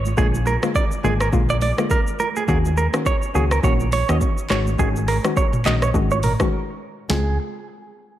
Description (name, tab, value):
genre	afrobeats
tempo	104 BPM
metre	4/4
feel	swing 58% on 16ths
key	Db major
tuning	A4 = 442 Hz
part	hollow-body short-scale fingered electric bass	bass	0.0-7.4 s	Ab1 to Eb2	-21 LUFS	equal	none
part	afro-pop drum kit	drums	0.1-7.3 s	handclaps, hi-hat, kick drum, rim click, shaker, snare drum, toms	-22 LUFS	equal	none
part	congas	percussion	0.1-7.4 s	none	-33 LUFS	right 9 dB	none
part	hollow square pluck	accompaniment	0.2-7.3 s	Db3 to Gb4	-25 LUFS	left 3 dB	chorus, low-pass filter
part	direct-recorded clean electric guitar	riff	0.2-7.4 s	Ab4 to Eb5	-24 LUFS	right 4 dB	spring reverb, low-pass filter, digital delay
room	light reverb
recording	none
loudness	-17 LUFS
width	side -12 dB against mid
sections	0.0-7.1 A section; 7.1-8.2 B section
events	filter sweep 0.0-7.1; break 6.5-7.1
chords	0.2 Bb7; 2.5 Ebm7; 4.5 Ab7sus4; 7.1 Dbmaj7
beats	| 0.17 0.75 1.33 1.91 | 2.48 3.06 3.63 4.21 | 4.79 5.37 5.94 6.52 | 7.10